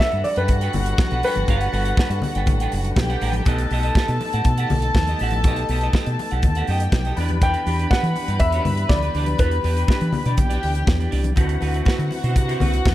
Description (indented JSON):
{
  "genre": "disco",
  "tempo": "121 BPM",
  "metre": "4/4",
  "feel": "straight",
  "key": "G major",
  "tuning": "A4 = 440 Hz",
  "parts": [
    { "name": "warm baby grand piano", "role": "melody", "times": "0.0-2.2, 7.4-10.8 s", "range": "B4 to G5", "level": "-26 LUFS", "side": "equal", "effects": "none" },
    { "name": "dark studio string section", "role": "second line", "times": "0.0-12.9 s", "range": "F#4 to B5", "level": "-27 LUFS", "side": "left 2 dB", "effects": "none" },
    { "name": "semi-hollow electric guitar", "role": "accompaniment", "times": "0.0-12.9 s", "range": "C4 to G5", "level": "-30 LUFS", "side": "right 6 dB", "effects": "spring reverb" },
    { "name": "percussive tonewheel organ", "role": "sustained chords", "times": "0.0-12.9 s", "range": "D3 to B4", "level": "-31 LUFS", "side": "left 1 dB", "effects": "overdrive, chorus vibrato, fast rotary speaker" },
    { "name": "fingered electric bass", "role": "bass", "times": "0.0-12.9 s", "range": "F#1 to E3", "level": "-22 LUFS", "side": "equal", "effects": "none" },
    { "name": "modern studio drum kit", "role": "drums", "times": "0.0-12.9 s", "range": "hi-hat, kick drum, snare drum", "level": "-22 LUFS", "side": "equal", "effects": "none" },
    { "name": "congas", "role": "percussion", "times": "0.0-12.9 s", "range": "none", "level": "-29 LUFS", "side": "left 4 dB", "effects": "none" }
  ],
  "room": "small room ambience",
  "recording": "none",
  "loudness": "-18 LUFS",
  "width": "side -14 dB against mid",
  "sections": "0.0-12.9 A section",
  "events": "none",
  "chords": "0.0 Gmaj9; 3.5 B7b13; 7.2 Em7; 11.4 D13"
}